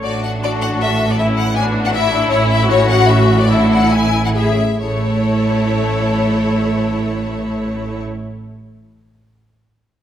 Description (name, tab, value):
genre	quick classical-period movement for string orchestra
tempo	132-160 BPM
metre	3/4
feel	rubato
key	A major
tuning	A4 = 440 Hz
part	clear chamber violin section	melody	0.0-8.0 s	C#5 to G#5	-20 LUFS	left 5 dB	none
part	rich symphonic violin section	second line	0.0-8.0 s	B3 to C#5	-24 LUFS	left 2 dB	none
part	rich chamber viola section	accompaniment	0.0-8.0 s	A3 to G#4	-20 LUFS	left 1 dB	none
part	rich chamber cello section	bass	0.0-8.0 s	A2	-19 LUFS	right 2 dB	none
part	rich chamber double bass section	bass	0.0-8.0 s	A1	-20 LUFS	right 2 dB	none
room	moderate scoring stage reverb, RT60 1.6 s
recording	none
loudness	-13 LUFS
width	side -10 dB against mid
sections	0.0-4.8 A section; 4.8-7.4 B section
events	slowing down 1.8-4.8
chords	0.0 D/A; 1.2 E5/A; 2.3 A; 3.5 Dadd9(#11)/A; 4.8 A